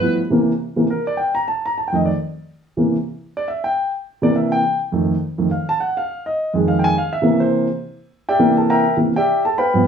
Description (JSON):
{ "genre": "jazz", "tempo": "208 BPM", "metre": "4/4", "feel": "swing 60% on 8ths", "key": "C mixolydian", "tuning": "A4 = 442 Hz", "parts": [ { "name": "warm grand piano", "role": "accompaniment", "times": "0.0-9.9 s", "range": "F2 to B5", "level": "-16 LUFS", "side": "equal", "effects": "none" } ], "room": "moderate club reverb, RT60 0.6 s", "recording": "studio reverb", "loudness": "-16 LUFS", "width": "side -7 dB against mid", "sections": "0.3-9.9 A section", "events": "grand piano solo 0.3-9.9", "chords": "0.3 C7; 1.4 F7; 2.6 C7; 4.9 F7; 6.1 Fm7; 7.2 C9" }